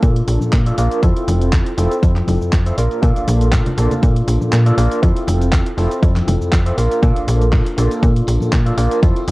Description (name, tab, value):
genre	filtered disco house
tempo	120 BPM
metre	4/4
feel	swing 54% on 16ths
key	unclear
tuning	A4 = 439 Hz
part	overdriven tine electric piano	accompaniment	0.0-9.3 s	Bb3 to Bb4	-20 LUFS	equal	medium tremolo, phaser, sidechain pumping, low-pass filter, cassette tape
part	slap-like FM bass	bass	0.0-9.3 s	F1 to Bb2	-16 LUFS	equal	tube saturation, sidechain pumping, low-pass filter
part	electronic kick drum	drums	0.0-9.1 s	none	-15 LUFS	equal	cassette tape
part	house drum kit	drums	0.0-9.3 s	cabasa, handclaps, hi-hat	-27 LUFS	equal	cassette tape
part	tambourine and congas	percussion	0.0-9.3 s	none	-26 LUFS	left 1 dB	sidechain pumping on perc, low-pass filter on perc
room	digital ambience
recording	home recording on cassette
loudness	-13 LUFS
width	side -21 dB against mid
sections	0.0-9.3 A section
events	filter sweep 0.0-9.3; kick drops out 4.5-5.0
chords	0.0 Bbmaj7; 1.0 Fmaj7; 2.8 Bbmaj7; 5.0 Fmaj7; 6.8 Bbmaj7